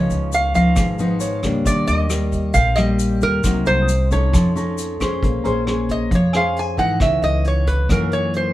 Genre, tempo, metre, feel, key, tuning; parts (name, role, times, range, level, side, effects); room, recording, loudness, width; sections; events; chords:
bossa nova; 135 BPM; 4/4; straight; Bb minor; A4 = 440 Hz
metal-body resonator slide guitar; melody; 0.0-8.5 s; Bb4 to Ab5; -21 LUFS; right 2 dB
clear concert grand piano; accompaniment; 0.0-7.2 s; Db5 to Eb6; -34 LUFS; right 2 dB
nylon-string guitar; accompaniment; 0.0-8.5 s; Gb2 to C5; -20 LUFS; left 1 dB
upright bass; bass; 0.0-8.5 s; Ab1 to Ab2; -22 LUFS; equal
vintage brush drum kit; drums; 0.1-8.4 s; hi-hat, kick drum, rim click; -24 LUFS; equal
tube shaker; percussion; 0.1-5.2 s; -34 LUFS; left 6 dB
wet small room reverb, RT60 0.5 s; heard from further back in the room; -16 LUFS; side -15 dB against mid
0.0-5.2 A section; 5.2-8.5 B section
resonator guitar played with a steel bar solo 5.2-8.5
0.0 Db9; 1.7 Ebmaj7; 3.4 Cm7b5; 4.3 F7b13; 5.2 Bbm9; 7.0 Dbm9; 7.9 Gb6